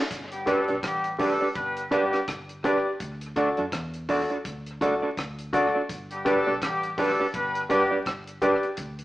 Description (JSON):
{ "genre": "roots reggae", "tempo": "83 BPM", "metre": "4/4", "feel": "swing 58% on 16ths", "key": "G major", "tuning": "A4 = 435 Hz", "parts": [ { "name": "mellow electric guitar", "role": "accompaniment", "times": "0.0-8.5 s", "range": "D4 to D5", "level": "-26 LUFS", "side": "right 2 dB", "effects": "none" }, { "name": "vintage muted fingered electric bass", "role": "bass", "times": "0.1-9.0 s", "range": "F#1 to F#2", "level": "-41 LUFS", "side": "equal", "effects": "none" }, { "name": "deep reggae drum kit", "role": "drums", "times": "0.1-9.0 s", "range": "hi-hat, kick drum, rim click", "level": "-35 LUFS", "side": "equal", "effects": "dub echo" }, { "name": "warm horn section", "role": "second line", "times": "0.3-8.0 s", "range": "G3 to B4", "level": "-28 LUFS", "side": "left 1 dB", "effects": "none" }, { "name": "dark concert grand piano", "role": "stabs", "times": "0.5-8.6 s", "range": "F#4 to D5", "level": "-27 LUFS", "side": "left 1 dB", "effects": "none" } ], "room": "wet stone room reverb, RT60 1.0 s", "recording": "band playing live in one room, vinyl crackle, small speaker sound", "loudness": "-24 LUFS", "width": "side -16 dB against mid", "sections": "0.1-9.0 A section", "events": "none", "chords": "0.1 G; 3.0 D; 5.9 G", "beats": "| 0.11 0.83 1.55 2.28 | 3.00 3.72 4.45 5.17 | 5.89 6.61 7.34 8.06 | 8.78" }